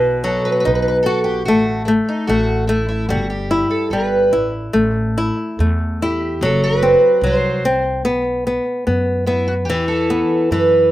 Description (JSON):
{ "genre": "fado-style ballad", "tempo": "74 BPM", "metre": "2/4", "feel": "rubato", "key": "E harmonic minor", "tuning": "A4 = 440 Hz", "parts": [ { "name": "fingerpicked twelve-string acoustic guitar", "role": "melody", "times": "0.0-10.9 s", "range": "D#4 to C5", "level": "-18 LUFS", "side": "right 2 dB", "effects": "slapback echo" }, { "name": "flamenco guitar", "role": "accompaniment", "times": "0.0-10.9 s", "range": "B2 to F#4", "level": "-18 LUFS", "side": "left 1 dB", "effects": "none" }, { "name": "upright bass", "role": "bass", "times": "0.0-10.9 s", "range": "F#1 to F#2", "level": "-22 LUFS", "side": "equal", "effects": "none" } ], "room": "little or no reverb", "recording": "recorded outdoors, with no room sound", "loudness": "-15 LUFS", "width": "side -15 dB against mid", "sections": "0.0-10.9 A section", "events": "none", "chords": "0.0 B; 1.5 F#m7/A; 3.1 Em/G; 4.7 A5; 6.4 F#(b5, no3); 8.0 B5; 9.7 E5" }